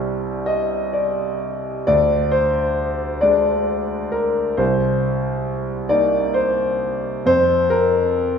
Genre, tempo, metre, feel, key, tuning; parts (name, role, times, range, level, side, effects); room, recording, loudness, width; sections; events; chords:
neoclassical minimalist piano; 45 BPM (dotted quarters); 6/8; rubato; A4 = 440 Hz
warm concert grand piano; solo; 0.0-8.4 s; C2 to Eb5; -17 LUFS; left 1 dB
wet scoring stage reverb, RT60 1.8 s; recorded in a church or concert hall; -17 LUFS; side -7 dB against mid
0.0-1.9 A section; 1.9-8.4 B section
0.0 Csus2; 1.9 Bb9/D; 4.6 Cm7; 7.3 F5